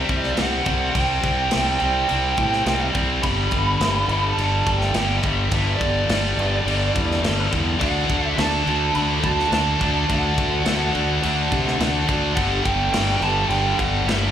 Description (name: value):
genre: hard rock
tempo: 105 BPM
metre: 4/4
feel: straight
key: unclear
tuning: A4 = 439 Hz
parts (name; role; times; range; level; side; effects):
- smooth overdriven lead guitar; melody; 0.0-14.3 s; D5 to B5; -25 LUFS; right 2 dB; slapback echo, tape echo
- heavy high-gain guitar; riff; 0.0-14.3 s; G2 to D4; -25 LUFS; left 11 dB; distortion
- high-gain distorted guitar; riff; 0.0-14.3 s; G2 to D4; -27 LUFS; right 11 dB; distortion
- fuzz fingered electric bass; bass; 0.0-14.3 s; G1 to C3; -24 LUFS; equal; overdrive
- tight metal drum kit; drums; 0.1-14.2 s; crash cymbal, kick drum, snare drum; -26 LUFS; equal; none
- high-gain distorted guitar; riff; 7.8-14.3 s; G2 to D4; -26 LUFS; equal; distortion, slapback echo
room: small room reverb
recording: live gig heard through the venue's PA, club reverb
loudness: -18 LUFS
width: side -9 dB against mid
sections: 0.0-14.3 A section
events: none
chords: 0.0 C5; 3.2 G; 7.8 D; 12.4 G5